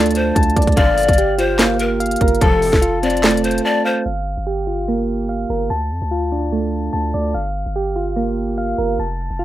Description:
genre	hip hop, trap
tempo	146 BPM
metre	4/4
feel	half-time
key	G minor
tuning	A4 = 440 Hz
part	breathy large pan pipes	second line	0.0-4.0 s	A4 to D5	-18 LUFS	left 3 dB	slapback echo
part	soft electric-piano-like synth keys	arpeggios	0.0-9.4 s	A3 to A5	-19 LUFS	right 2 dB	chorus, slapback echo
part	long sustained 808-style bass	bass	0.0-9.4 s	F1 to F2	-24 LUFS	equal	none
part	trap drum kit	drums	0.0-3.6 s	handclaps, hi-hat, kick drum, snare drum	-17 LUFS	equal	none
part	chorused polysynth	stabs	0.8-2.7 s	A2 to F3	-24 LUFS	left 1 dB	none
room	little or no reverb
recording	rough home demo mix, low-pass filter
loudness	-15 LUFS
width	side -13 dB against mid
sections	0.0-4.1 A section; 4.1-9.4 B section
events	break 3.6-4.1; filter sweep 4.1-9.4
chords	0.0 Dm; 0.8 Gm7; 2.4 F; 4.1 Gm7; 5.7 Dm; 7.3 Gm7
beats	0.36 | 0.77 1.18 1.59 2.00 | 2.42 2.83 3.24 3.65 | 4.06 4.47 4.88 5.29 | 5.70 6.11 6.52 6.93 | 7.35 7.76 8.17 8.58 | 8.99 9.40

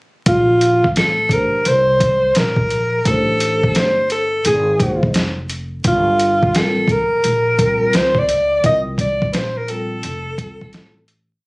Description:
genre	hip hop, jazz-hop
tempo	86 BPM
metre	4/4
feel	swing 64% on 16ths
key	Bb major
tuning	A4 = 441 Hz
part	mellow alto saxophone	melody	0.3-11.1 s	F4 to Eb5	-16 LUFS	equal	none
part	upright bass	bass	0.3-11.4 s	F1 to Db2	-23 LUFS	equal	none
part	trip hop sampler-style drum kit	drums	0.3-11.3 s	hi-hat, kick drum, snare drum	-19 LUFS	equal	overdrive
part	vibraphone with soft mallets	accompaniment	1.3-10.8 s	G3 to C5	-24 LUFS	equal	none
room	light reverb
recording	recorded on a phone in the room, studio reverb, vinyl crackle, compression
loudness	-14 LUFS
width	side -27 dB against mid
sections	0.3-11.4 A section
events	fade-out 8.6-11.4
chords	0.3 Bbmaj7sus2; 3.1 Gsus24; 4.4 Abadd9; 5.8 Gm9; 8.6 C5; 10.0 Fadd9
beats	| 0.26 0.96 1.66 2.36 | 3.05 3.75 4.45 5.15 | 5.84 6.54 7.24 7.94 | 8.63 9.33 10.03 10.73

